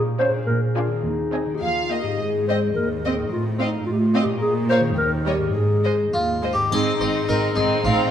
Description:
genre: cinematic, playful, whimsical film cue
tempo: 106 BPM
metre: 2/4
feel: straight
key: Ab major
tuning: A4 = 440 Hz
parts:
  - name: dark clarinet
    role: second line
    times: 0.0-6.1 s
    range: Eb4 to C5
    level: -24 LUFS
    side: left 1 dB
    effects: none
  - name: concert harp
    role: arpeggios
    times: 0.0-8.1 s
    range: Ab2 to C5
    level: -28 LUFS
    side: left 6 dB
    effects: none
  - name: warm studio cello section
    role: bass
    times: 0.0-7.9 s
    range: Eb2 to Bb2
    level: -24 LUFS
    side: right 2 dB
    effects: none
  - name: warm studio violin section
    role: melody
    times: 0.2-8.1 s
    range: Eb5 to Ab5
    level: -32 LUFS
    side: left 2 dB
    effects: none
  - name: warm studio violin section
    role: second line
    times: 0.2-8.1 s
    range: Eb4 to F5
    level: -28 LUFS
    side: left 1 dB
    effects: none
  - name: warm studio viola section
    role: accompaniment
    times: 0.2-8.1 s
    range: G3 to D4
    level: -29 LUFS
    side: right 3 dB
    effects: none
  - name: harpsichord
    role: melody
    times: 6.1-8.1 s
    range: F4 to C5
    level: -23 LUFS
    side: equal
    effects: none
  - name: dark studio double bass section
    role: bass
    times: 6.7-7.9 s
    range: Ab1 to A1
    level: -27 LUFS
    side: right 5 dB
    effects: none
  - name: triangle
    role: percussion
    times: 6.7-7.8 s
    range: none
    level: -34 LUFS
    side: left 3 dB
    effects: none
room: moderate scoring stage reverb, RT60 1.9 s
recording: dark, warm production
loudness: -19 LUFS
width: side -9 dB against mid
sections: 0.0-6.7 A section; 6.7-8.1 A section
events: none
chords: 0.5 Bb7; 1.1 Ab/Eb; 1.6 Eb; 2.2 Ab; 3.3 F7/A; 4.4 Bbm; 5.0 Eb7; 5.6 Ab

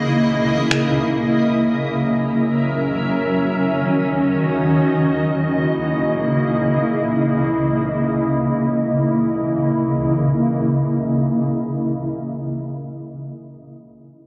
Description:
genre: hip hop, atmospheric cloud-rap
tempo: free time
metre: none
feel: none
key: C# dorian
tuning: A4 = 439 Hz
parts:
  - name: granular cloud pad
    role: sustained chords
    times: 0.0-12.7 s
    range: C#3 to E5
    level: -19 LUFS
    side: equal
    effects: built-in reverb
  - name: electronic finger snaps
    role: drums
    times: 0.7-0.8 s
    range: none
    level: -26 LUFS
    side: equal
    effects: soft clipping on snare
room: wet recital hall reverb, RT60 1.5 s, digital ambience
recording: dense, heavily limited modern master, low-pass filter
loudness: -19 LUFS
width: mono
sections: 0.0-8.5 A section; 8.5-11.9 B section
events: break 0.0-1.6; filter sweep 0.0-8.5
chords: 0.0 C#m69; 1.6 F#7; 3.3 D#m7; 5.0 C#m69

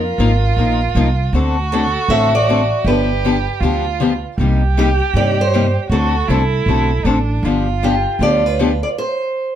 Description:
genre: acoustic string swing (jazz manouche)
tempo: 157 BPM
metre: 4/4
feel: swing 63% on 8ths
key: unclear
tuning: A4 = 441 Hz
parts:
  - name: picked old ladder-braced acoustic guitar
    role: melody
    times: 0.0-9.6 s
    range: G4 to E5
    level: -20 LUFS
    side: right 2 dB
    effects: none
  - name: warm violin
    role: second line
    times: 0.0-8.9 s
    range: D4 to G4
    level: -22 LUFS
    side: right 6 dB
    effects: none
  - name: picked acoustic archtop guitar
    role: accompaniment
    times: 0.0-8.7 s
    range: C3 to Bb4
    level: -18 LUFS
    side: left 4 dB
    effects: none
  - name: upright bass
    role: bass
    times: 0.0-8.8 s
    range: G1 to G2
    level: -18 LUFS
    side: right 1 dB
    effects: none
room: light reverb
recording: dark, warm production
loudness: -14 LUFS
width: side -10 dB against mid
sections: 0.0-9.6 A section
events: stop 9.0-9.6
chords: 0.0 F7sus4; 1.3 D7; 2.9 G7; 4.4 Cm7; 5.9 D7; 7.4 G7; 9.0 N.C.

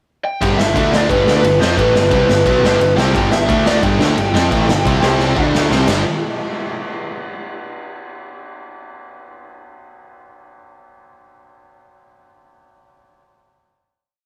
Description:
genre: punk rock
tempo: 176 BPM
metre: 4/4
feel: straight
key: G major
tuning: A4 = 443 Hz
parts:
  - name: lead guitar through a small cranked amp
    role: melody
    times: 0.2-5.5 s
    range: B4 to G5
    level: -20 LUFS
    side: equal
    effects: overdrive
  - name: overdriven semi-hollow guitar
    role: riff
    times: 0.4-6.0 s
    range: G2 to F4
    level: -26 LUFS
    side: equal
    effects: none
  - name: thick fuzz guitar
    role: riff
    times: 0.4-6.0 s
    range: G2 to F4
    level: -22 LUFS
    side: equal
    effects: distortion
  - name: tight distorted guitar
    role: riff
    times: 0.4-6.0 s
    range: G2 to F4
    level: -27 LUFS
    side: equal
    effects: distortion
  - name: growling picked electric bass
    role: bass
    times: 0.4-6.0 s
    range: G1 to F2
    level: -22 LUFS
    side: equal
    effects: overdrive
  - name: raw garage drum kit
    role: drums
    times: 0.4-6.0 s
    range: kick drum, ride cymbal, snare drum, splash cymbal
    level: -22 LUFS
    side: equal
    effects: none
room: light reverb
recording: rough rehearsal-room recording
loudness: -15 LUFS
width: mono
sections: 0.0-0.4 pickup bar; 0.4-5.9 riff; 5.9-7.2 final chord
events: drum fill 5.2-5.9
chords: 0.4 G5; 0.8 D5; 1.1 G; 3.5 D5; 3.8 G5; 5.0 C5; 5.4 D5; 5.7 C5; 5.9 G5

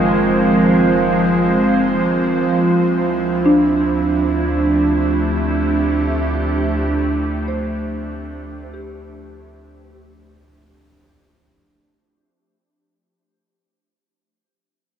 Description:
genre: ambient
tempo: free time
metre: none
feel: none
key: unclear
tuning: A4 = 440 Hz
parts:
  - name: evolving wavetable pad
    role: sustained chords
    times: 0.0-11.8 s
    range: Eb3 to C5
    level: -18 LUFS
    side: right 1 dB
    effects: chorus, built-in reverb
  - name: soft synth bell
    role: arpeggios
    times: 0.0-13.8 s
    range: D4 to Eb5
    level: -21 LUFS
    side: equal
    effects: chorus, diffuse ambient delay
  - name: warm sub bass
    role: bass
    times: 0.0-11.7 s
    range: Gb1 to D2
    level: -26 LUFS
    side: equal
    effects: none
  - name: bowed-like drone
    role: drone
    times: 0.0-11.9 s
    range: F3 to C4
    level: -20 LUFS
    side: right 2 dB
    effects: built-in reverb
room: wet huge ambient reverb, RT60 7.6 s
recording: small room ambience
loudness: -15 LUFS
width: side -8 dB against mid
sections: 0.0-11.8 A section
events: fade-out 0.0-11.8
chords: 0.0 Gbadd9; 2.8 Dm7

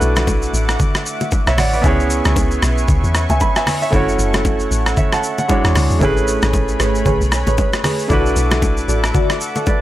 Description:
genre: amapiano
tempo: 115 BPM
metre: 4/4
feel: swing 58% on 16ths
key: unclear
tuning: A4 = 435 Hz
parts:
  - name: clear grand piano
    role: accompaniment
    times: 0.0-9.8 s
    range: G#3 to B5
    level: -20 LUFS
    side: right 1 dB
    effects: none
  - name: warm analog pad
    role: sustained chords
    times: 0.0-9.8 s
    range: A3 to D6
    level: -26 LUFS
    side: equal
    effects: chorus, sidechain pumping
  - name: deep log drum bass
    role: bass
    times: 0.0-9.1 s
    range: F#1 to E2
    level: -18 LUFS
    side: equal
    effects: none
  - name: boom bap sampler-style drum kit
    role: drums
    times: 0.0-9.8 s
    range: hi-hat, kick drum, rim click, shaker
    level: -19 LUFS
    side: equal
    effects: overdrive
  - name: bongos and congas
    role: percussion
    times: 0.2-9.8 s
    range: none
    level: -23 LUFS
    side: left 1 dB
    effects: none
  - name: deep mellow chord stab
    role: stabs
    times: 6.0-9.8 s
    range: F#4 to D5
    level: -22 LUFS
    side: equal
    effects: chorus, tape echo
room: digital ambience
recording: dry, gritty hardware recording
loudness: -14 LUFS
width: side -14 dB against mid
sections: 0.0-9.8 A section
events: none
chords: 0.0 E9sus4; 1.8 C#m7; 3.9 F#m7; 5.5 E13; 6.0 Amaj9; 8.1 E9sus4

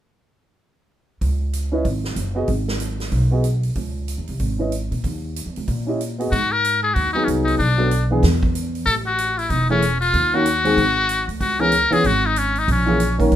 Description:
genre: jazz, small-group swing and bop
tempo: 188 BPM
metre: 4/4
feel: swing 62% on 8ths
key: G# minor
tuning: A4 = 445 Hz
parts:
  - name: upright bass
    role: bass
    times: 1.2-13.4 s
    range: E1 to A#2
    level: -22 LUFS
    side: right 1 dB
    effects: none
  - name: swinging big-band drum kit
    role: drums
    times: 1.2-13.4 s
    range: hi-hat, kick drum, snare drum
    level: -28 LUFS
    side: right 1 dB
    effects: none
  - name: dark baby grand piano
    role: accompaniment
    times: 1.7-13.3 s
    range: D#3 to D#5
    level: -21 LUFS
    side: equal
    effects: none
  - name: trumpet with metal mute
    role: melody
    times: 6.3-13.2 s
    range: C#4 to A#4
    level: -19 LUFS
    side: left 2 dB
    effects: none
room: light reverb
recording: minimal, uncompressed stereo recording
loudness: -18 LUFS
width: side -11 dB against mid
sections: 1.2-6.3 A section; 6.3-13.4 B section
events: none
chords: 1.2 C#7sus2; 2.5 G#m; 3.8 C#sus2; 5.0 D#7(no3); 6.3 G#m7; 7.6 Bm7; 8.2 N.C.; 8.9 A; 10.1 D#m7; 10.8 F#sus2/G#; 11.4 C#m7; 12.7 A#m7b5

